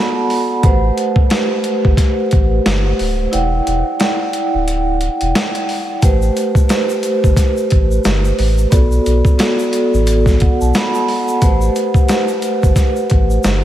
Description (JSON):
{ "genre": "hip hop, boom-bap hip-hop", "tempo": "89 BPM", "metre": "4/4", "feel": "swing 59% on 16ths", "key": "A dorian", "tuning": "A4 = 435 Hz", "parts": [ { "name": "vibraphone with soft mallets", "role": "accompaniment", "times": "0.0-13.6 s", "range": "A3 to B5", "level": "-16 LUFS", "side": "right 1 dB", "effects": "high-pass filter, low-pass filter" }, { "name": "boom bap sampler-style drum kit", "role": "drums", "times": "0.3-13.6 s", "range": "hi-hat, kick drum, snare drum", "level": "-15 LUFS", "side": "equal", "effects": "none" }, { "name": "warm sub bass", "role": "bass", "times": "0.6-13.6 s", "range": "D1 to B1", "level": "-16 LUFS", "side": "equal", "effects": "none" }, { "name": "tube shaker", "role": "percussion", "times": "6.0-13.6 s", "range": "none", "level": "-35 LUFS", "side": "left 4 dB", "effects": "none" } ], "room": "moderate huge ambient reverb, RT60 3.9 s", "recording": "dreamy mix soaked in reverb, vinyl crackle", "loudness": "-12 LUFS", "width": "side -12 dB against mid", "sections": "0.0-13.6 A section", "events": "break 3.3-6.0", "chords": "0.0 Bm7; 0.6 Am9; 3.3 Em9; 6.0 Am9; 8.7 Bm7; 11.4 Am9" }